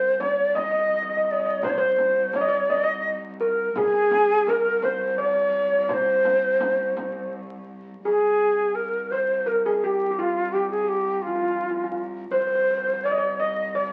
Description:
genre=Arabic maqam ensemble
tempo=56 BPM (dotted quarters)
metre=6/8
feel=straight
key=C maqam bayati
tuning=A4 = 440 Hz
part: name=breathy bright ney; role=melody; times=0.0-13.9 s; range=F4 to Eb5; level=-24 LUFS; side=equal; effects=none
part: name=steel pan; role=second line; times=0.0-13.9 s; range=F4 to Eb5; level=-29 LUFS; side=equal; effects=none
part: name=rich cello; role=drone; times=0.0-13.9 s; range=C2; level=-40 LUFS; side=equal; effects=none
part: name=frame drum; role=percussion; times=0.2-7.1 s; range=none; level=-39 LUFS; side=equal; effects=none
room=wet studio reverb, RT60 0.8 s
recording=very old 78 rpm record, vinyl crackle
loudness=-23 LUFS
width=mono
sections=0.0-8.0 A section; 8.0-13.9 B section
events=none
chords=none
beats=0.56 | 1.63 2.70 | 3.77 4.83 | 5.90 6.97 | 8.04 9.11 | 10.18 11.25 | 12.32 13.39

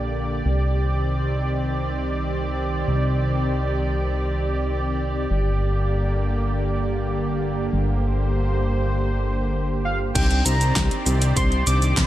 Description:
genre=synthwave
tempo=99 BPM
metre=4/4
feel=straight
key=C minor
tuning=A4 = 440 Hz
part: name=warm analog pad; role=sustained chords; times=0.0-12.1 s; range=D3 to D5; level=-26 LUFS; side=right 1 dB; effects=chorus, sidechain pumping
part: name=fat analog bass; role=bass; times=0.0-12.1 s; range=G1 to C2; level=-22 LUFS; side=equal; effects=none
part: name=wide unison lead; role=melody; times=9.8-12.1 s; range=F5 to D6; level=-26 LUFS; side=equal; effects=none
part: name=analog synth brass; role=stabs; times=10.2-12.1 s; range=C4 to C5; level=-29 LUFS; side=left 1 dB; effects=chorus, cassette tape
part: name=electronic kick drum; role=drums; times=10.2-12.1 s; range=none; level=-24 LUFS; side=equal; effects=studio reverb
part: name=pop drum kit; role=drums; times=10.2-12.1 s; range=crash cymbal, handclaps, hi-hat, shaker, snare drum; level=-25 LUFS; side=equal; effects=studio reverb
room=light reverb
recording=none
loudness=-20 LUFS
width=side -13 dB against mid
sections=0.0-10.2 A section; 10.2-12.1 B section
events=none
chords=0.5 Cmadd9; 5.3 Gm; 10.2 Cmadd9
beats=| 0.46 1.06 1.67 2.27 | 2.88 3.49 4.09 4.70 | 5.30 5.91 6.52 7.12 | 7.73 8.34 8.94 9.55 | 10.15 10.76 11.37 11.97

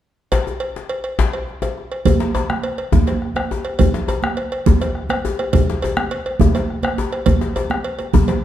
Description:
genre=west african traditional, West African drum ensemble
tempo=138 BPM (dotted quarters)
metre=12/8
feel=straight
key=none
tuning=none
part: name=cowbell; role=percussion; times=0.3-8.4 s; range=none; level=-25 LUFS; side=right 1 dB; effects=none
part: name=djembe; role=percussion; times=0.3-8.4 s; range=none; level=-20 LUFS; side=left 3 dB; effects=none
part: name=bombo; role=percussion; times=2.1-8.4 s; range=none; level=-21 LUFS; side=right 1 dB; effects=none
part: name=congas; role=percussion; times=2.1-8.4 s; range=none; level=-21 LUFS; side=right 6 dB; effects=none
room=wet recital hall reverb, RT60 1.6 s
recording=dark, warm production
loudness=-17 LUFS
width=side -11 dB against mid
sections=0.3-2.1 A section; 2.1-8.4 B section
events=drum fill 8.3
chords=none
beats=| 0.32 0.75 1.19 1.62 | 2.06 2.49 2.93 3.36 | 3.80 4.23 4.67 5.10 | 5.54 5.97 6.41 6.84 | 7.28 7.71 8.14

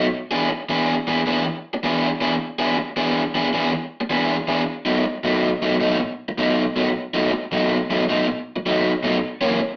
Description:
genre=blues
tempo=105 BPM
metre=4/4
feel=swing 66% on 8ths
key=B mixolydian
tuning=A4 = 439 Hz
part: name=overdriven semi-hollow guitar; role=solo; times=0.0-9.6 s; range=F#2 to G#4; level=-22 LUFS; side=equal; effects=slapback echo
room=moderate studio ambience, RT60 0.4 s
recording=band playing live in one room, AM radio sound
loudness=-22 LUFS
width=mono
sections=0.0-9.8 A section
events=none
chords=0.1 E7; 4.7 B7; 9.2 F#7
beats=| 0.12 0.69 1.26 1.83 | 2.40 2.96 3.53 4.10 | 4.67 5.24 5.81 6.38 | 6.95 7.52 8.09 8.66 | 9.23

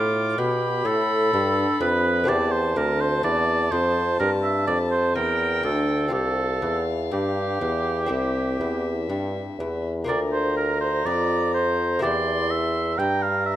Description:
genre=classical, baroque-style sonata movement with continuo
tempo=62 BPM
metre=4/4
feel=straight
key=unclear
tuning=A4 = 440 Hz
part: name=dark violin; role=melody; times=0.0-13.6 s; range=E5 to D6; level=-31 LUFS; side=left 6 dB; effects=none
part: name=clear oboe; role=second line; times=0.0-13.6 s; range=F4 to G5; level=-24 LUFS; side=right 3 dB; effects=none
part: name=lute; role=accompaniment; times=0.0-13.6 s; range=D2 to Bb4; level=-29 LUFS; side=left 2 dB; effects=none
part: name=mellow bassoon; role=bass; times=0.0-13.6 s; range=C2 to B2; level=-25 LUFS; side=equal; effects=none
room=moderate recital hall reverb, RT60 1.4 s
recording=none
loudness=-21 LUFS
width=side -12 dB against mid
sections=0.0-13.6 A section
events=none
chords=0.0 G7; 2.3 C7; 6.1 Csus4; 8.1 C; 10.1 Bb/D; 12.0 Edim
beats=0.38 1.33 | 2.29 3.24 4.20 5.16 | 6.13 7.12 8.11 9.10 | 10.09 11.06 12.03 12.99

